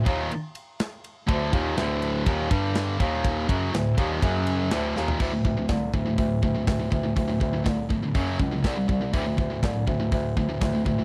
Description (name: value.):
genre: heavy metal.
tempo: 122 BPM.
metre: 4/4.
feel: straight.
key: unclear.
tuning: A4 = 439 Hz.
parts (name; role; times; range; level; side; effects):
high-gain distorted guitar; riff; 0.0-11.0 s; D2 to C4; -31 LUFS; equal; distortion.
clear bass clarinet; bass; 0.0-11.0 s; C2 to G2; -31 LUFS; equal; none.
high-gain distorted guitar; riff; 0.1-11.0 s; D2 to C4; -31 LUFS; equal; distortion.
tight metal drum kit; drums; 0.1-11.0 s; crash cymbal, hi-hat, kick drum, ride cymbal, snare drum, toms; -28 LUFS; equal; none.
room: little or no reverb.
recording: dry, close 1970s-style studio recording.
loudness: -25 LUFS.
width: mono.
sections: 0.0-5.2 A section; 5.2-11.0 B section.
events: drum fill 5.0.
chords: 0.0 D5; 2.5 G5; 3.0 Eb5; 3.5 D; 4.2 F#5; 4.7 D5; 8.1 F#5; 8.6 C5; 9.1 D5.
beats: 0.31 0.80 | 1.28 1.77 2.26 2.75 | 3.24 3.73 4.22 4.71 | 5.20 5.69 6.18 6.67 | 7.16 7.65 8.15 8.64 | 9.13 9.62 10.12 10.61.